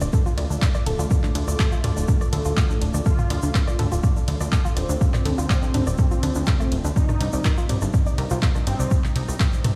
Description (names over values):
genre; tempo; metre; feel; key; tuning
melodic techno; 123 BPM; 4/4; straight; D phrygian; A4 = 439 Hz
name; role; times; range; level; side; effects
sweeping resonant pad; sustained chords; 0.0-9.8 s; C3 to D5; -36 LUFS; equal; subtle chorus, sidechain pumping
woody wave-folded pluck; arpeggios; 0.0-8.8 s; A3 to D5; -35 LUFS; equal; chorus, sidechain pumping, dub echo
plucky analog bass; bass; 0.0-9.7 s; D1 to D2; -26 LUFS; equal; sidechain pumping
punchy analog drum machine; drums; 0.0-9.7 s; handclaps, hi-hat, ride cymbal, rim click, toms; -32 LUFS; equal; overdrive
tube shaker; percussion; 0.0-9.6 s; none; -40 LUFS; equal; none
electronic kick drum; drums; 0.1-9.5 s; none; -22 LUFS; equal; overdrive
fat analog lead; melody; 0.9-8.9 s; A3 to F4; -34 LUFS; equal; ensemble chorus, tape echo
room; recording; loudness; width
little or no reverb; played on a big sound system in a bare room, stone room reverb; -22 LUFS; mono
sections
0.0-9.8 A section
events
none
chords
0.0 Dm7; 7.0 Cmadd9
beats
0.13 0.62 | 1.11 1.60 2.08 2.57 | 3.06 3.55 4.04 4.52 | 5.01 5.50 5.99 6.47 | 6.96 7.45 7.94 8.43 | 8.91 9.40